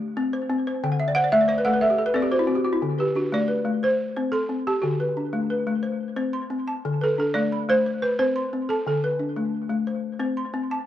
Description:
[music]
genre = west african traditional, West African string and xylophone music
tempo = 119 BPM (dotted quarters)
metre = 12/8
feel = straight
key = D mixolydian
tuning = A4 = 439 Hz
[part]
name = balafon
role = arpeggios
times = 0.2-10.9 s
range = D3 to C6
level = -24 LUFS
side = left 2 dB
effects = tape echo
[part]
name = balafon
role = melody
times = 1.1-10.2 s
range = F#4 to F#5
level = -23 LUFS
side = right 2 dB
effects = none
[sound]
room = small room ambience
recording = dry, close 1970s-style studio recording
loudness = -21 LUFS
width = side -12 dB against mid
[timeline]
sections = 0.0-2.8 A section; 2.8-10.9 B section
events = balafon solo 0.0-2.8; balafon fill 0.8-2.8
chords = 0.0 C5; 0.8 D5; 1.8 N.C.; 2.8 D5; 3.8 Am; 4.8 D; 5.8 Am; 6.8 D5; 7.9 Amadd9; 8.9 D5; 9.9 Am

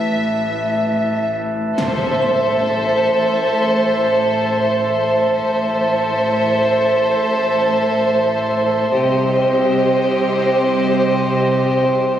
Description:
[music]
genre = cinematic, suspense film score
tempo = free time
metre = none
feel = none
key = A minor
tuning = A4 = 440 Hz
[part]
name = rich chamber violin section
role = melody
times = 0.0-12.2 s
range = Eb5 to E5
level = -28 LUFS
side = left 3 dB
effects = none
[part]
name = glass harmonica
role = sustained chords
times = 0.0-12.2 s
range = B4 to A5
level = -19 LUFS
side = right 1 dB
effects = none
[part]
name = clear studio cello section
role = bass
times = 0.0-12.2 s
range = A2 to C3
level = -25 LUFS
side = left 1 dB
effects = none
[part]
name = sub bass with octave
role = drone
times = 0.0-12.2 s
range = A1 to C2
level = -27 LUFS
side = equal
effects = none
[part]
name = vibraphone with hard mallets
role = texture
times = 0.0-9.0 s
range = C6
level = -35 LUFS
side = left 2 dB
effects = none
[part]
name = rich chamber violin section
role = second line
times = 1.8-12.2 s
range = G4 to C5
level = -18 LUFS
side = equal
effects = none
[part]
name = rich symphonic double bass section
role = bass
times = 1.8-12.2 s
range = A1 to C2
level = -28 LUFS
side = right 5 dB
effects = none
[part]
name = impact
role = sound effects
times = 1.8-5.4 s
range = none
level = -25 LUFS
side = left 1 dB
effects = none
[sound]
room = moderate scoring stage reverb, RT60 1.8 s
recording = recorded on a phone in the room, club reverb, compression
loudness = -15 LUFS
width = side -10 dB against mid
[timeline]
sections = 0.0-1.8 A section; 1.8-12.2 B section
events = impact 1.8-5.4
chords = 0.0 Asus2; 1.8 Am; 8.9 Cm

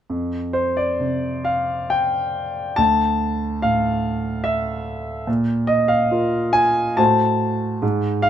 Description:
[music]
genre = classical, impressionist solo piano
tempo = 65-73 BPM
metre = 3/4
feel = rubato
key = F major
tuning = A4 = 440 Hz
[part]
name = clear concert grand piano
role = solo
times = 0.1-8.3 s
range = D2 to A5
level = -18 LUFS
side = equal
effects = none
[sound]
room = light reverb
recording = none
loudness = -18 LUFS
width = side -10 dB against mid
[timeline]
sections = 0.1-8.3 A section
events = none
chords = 0.1 F5; 2.8 Dmadd9; 5.3 Bb5; 7.0 Am6

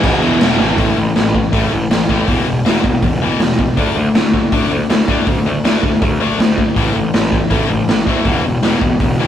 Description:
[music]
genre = punk rock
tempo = 160 BPM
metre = 4/4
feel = straight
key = unclear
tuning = A4 = 440 Hz
[part]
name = distorted electric guitar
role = riff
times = 0.0-9.3 s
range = E2 to D4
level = -17 LUFS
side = left 4 dB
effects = overdrive
[part]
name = sludgy distorted guitar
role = riff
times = 0.0-0.8 s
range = E2 to E3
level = -20 LUFS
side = right 5 dB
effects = overdrive
[part]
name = fuzz picked electric bass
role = bass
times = 0.0-9.2 s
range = E1 to E2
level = -19 LUFS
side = right 1 dB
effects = overdrive
[part]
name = raw garage drum kit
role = drums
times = 0.0-9.1 s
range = crash cymbal, hi-hat, kick drum, snare drum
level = -15 LUFS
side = right 1 dB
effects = none
[sound]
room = light reverb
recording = rough rehearsal-room recording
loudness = -12 LUFS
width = side -10 dB against mid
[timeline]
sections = 0.8-9.3 A section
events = drum fill 0.6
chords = 0.0 E; 0.8 A5; 2.3 E5; 3.8 D5; 6.8 A5; 8.3 E5

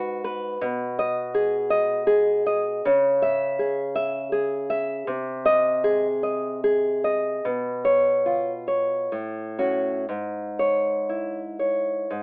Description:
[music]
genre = romantic piece for solo classical guitar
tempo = 58-84 BPM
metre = 3/4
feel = rubato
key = C# minor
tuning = A4 = 440 Hz
[part]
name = nylon-string guitar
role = solo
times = 0.0-12.2 s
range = G#2 to E5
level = -24 LUFS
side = equal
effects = none
[sound]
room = light reverb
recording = rough home demo mix, telephone sound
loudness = -24 LUFS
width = mono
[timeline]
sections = 0.0-12.2 A section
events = none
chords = 0.0 G#m7; 0.6 G#m/B; 2.8 C#m; 5.1 G#/B#; 7.4 C#7/B; 9.1 F#m/A; 10.1 C#m/G#

